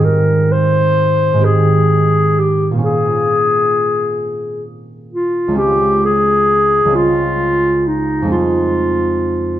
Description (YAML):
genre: classical, impressionist duo for clarinet and harp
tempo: 44 BPM (dotted quarters)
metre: 6/8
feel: rubato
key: unclear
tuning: A4 = 440 Hz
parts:
  - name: clear clarinet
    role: melody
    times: 0.0-9.6 s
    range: Eb4 to C5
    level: -14 LUFS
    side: left 2 dB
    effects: none
  - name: concert harp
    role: accompaniment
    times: 0.0-9.6 s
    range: Db2 to Ab4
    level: -16 LUFS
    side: right 3 dB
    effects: none
room: moderate recital hall reverb, RT60 1.5 s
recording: none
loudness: -12 LUFS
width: side -12 dB against mid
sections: 0.0-9.6 A section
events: none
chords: 0.0 Abmaj7; 2.8 Bbm9; 5.6 Dbmaj7; 8.3 Fm7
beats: | 0.04 1.45 | 2.85 4.21 | 5.59 6.95 | 8.33